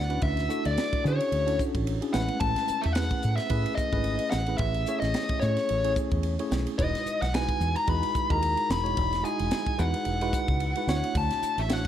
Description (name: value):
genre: electric jazz fusion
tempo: 110 BPM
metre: 4/4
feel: swing 56% on 16ths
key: D lydian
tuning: A4 = 439 Hz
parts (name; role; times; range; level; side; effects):
- bluesy overdriven lead guitar; melody; 0.0-11.9 s; C#5 to B5; -29 LUFS; left 2 dB; distortion
- tine electric piano; accompaniment; 0.0-11.9 s; G#3 to C#5; -32 LUFS; right 1 dB; overdrive, fast stereo tremolo
- fingered electric bass; bass; 0.0-11.8 s; E1 to D3; -28 LUFS; equal; none
- crisp fusion drum kit; drums; 0.1-11.9 s; hi-hat, kick drum, ride cymbal, snare drum; -32 LUFS; equal; none
room: light reverb, small room ambience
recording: none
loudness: -24 LUFS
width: side -10 dB against mid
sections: 0.0-11.9 A section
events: none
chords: 0.0 Dmaj9; 2.1 Amaj9; 6.8 Emaj9; 10.9 Dmaj9